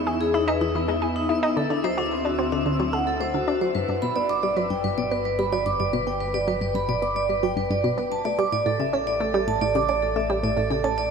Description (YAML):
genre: ambient, sequencer-driven space music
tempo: 110 BPM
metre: 4/4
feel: straight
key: unclear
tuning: A4 = 440 Hz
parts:
  - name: analog drone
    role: bass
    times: 0.0-11.1 s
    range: G1 to E2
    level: -34 LUFS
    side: equal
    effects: chorus
  - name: twinkling granular texture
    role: texture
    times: 0.0-3.8 s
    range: E4 to E5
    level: -34 LUFS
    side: right 1 dB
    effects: built-in reverb, shimmer reverb
  - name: vibraphone with medium hard mallets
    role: arpeggios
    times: 0.1-11.1 s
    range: B3 to D6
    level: -24 LUFS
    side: moving between left 4 dB and right 4 dB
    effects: auto-pan, ping-pong delay, shimmer reverb
  - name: analog pluck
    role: riff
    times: 0.1-10.9 s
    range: G2 to A4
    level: -26 LUFS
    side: equal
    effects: chorus, ping-pong delay, shimmer reverb
room: wet huge ambient reverb, RT60 8.1 s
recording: none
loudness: -21 LUFS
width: side -6 dB against mid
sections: 0.0-3.8 A section; 3.8-11.1 B section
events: none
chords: 0.0 Emaj7; 1.6 D7; 3.8 G; 8.1 Asus4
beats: 0.48 1.02 | 1.57 2.11 2.66 3.21 | 3.75 4.30 4.84 5.39 | 5.93 6.48 7.02 7.57 | 8.11 8.66 9.21 9.75 | 10.30 10.84